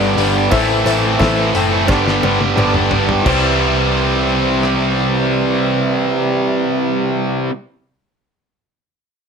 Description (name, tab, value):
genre	classic rock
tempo	88 BPM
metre	4/4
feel	straight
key	C major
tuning	A4 = 440 Hz
part	bright reed electric piano	accompaniment	0.0-7.5 s	D4 to G5	-23 LUFS	left 5 dB	fast tremolo
part	cranked stack guitar	riff	0.0-7.5 s	G2 to A4	-19 LUFS	right 10 dB	overdrive
part	sludgy distorted guitar	riff	0.0-7.5 s	G2 to E4	-20 LUFS	left 9 dB	overdrive
part	tight distorted guitar	riff	0.0-7.5 s	G2 to C4	-19 LUFS	equal	distortion
part	hollow-body short-scale picked electric bass	bass	0.0-7.5 s	F#1 to C2	-22 LUFS	equal	none
part	damped 70s drum kit	drums	0.2-4.8 s	crash cymbal, hi-hat, kick drum, rim click, snare drum, toms	-22 LUFS	equal	none
part	cowbell	percussion	0.5-3.6 s	none	-26 LUFS	right 7 dB	none
room	light reverb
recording	none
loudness	-13 LUFS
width	side -6 dB against mid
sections	0.0-3.3 A section; 3.3-6.0 B section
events	drum fill 1.9-3.3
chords	0.0 G; 0.5 Am; 1.9 G; 3.3 C